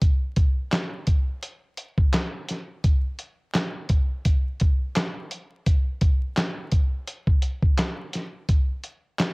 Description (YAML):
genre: hip hop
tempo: 85 BPM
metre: 4/4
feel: swing 55% on 16ths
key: none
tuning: none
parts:
  - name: dusty soul sampler-style drum kit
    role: drums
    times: 0.0-9.3 s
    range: handclaps, hi-hat, kick drum, snare drum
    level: -21 LUFS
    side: equal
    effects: vintage 12-bit sampler grit, cassette tape
room: little or no reverb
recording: home recording on cassette, vinyl crackle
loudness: -22 LUFS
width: side -33 dB against mid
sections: 0.0-9.3 A section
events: none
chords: none